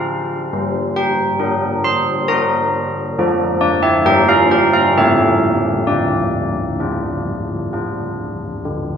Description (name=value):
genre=classical, tune for church bells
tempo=67 BPM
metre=3/4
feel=uneven beats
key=D minor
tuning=A4 = 439 Hz
part: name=old church bells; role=solo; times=0.0-9.0 s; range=D3 to C6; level=-14 LUFS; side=equal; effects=none
room=wet recital hall reverb, RT60 1.7 s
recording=none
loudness=-14 LUFS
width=side -7 dB against mid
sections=0.0-8.6 A section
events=none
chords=0.0 Dm (rootless); 0.5 Gm; 3.2 Dm/F; 4.0 Gm7; 4.9 A7; 5.9 Dm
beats=| 0.53 1.41 2.29 | 3.17 4.04 4.94 | 5.86 6.79 7.72 | 8.64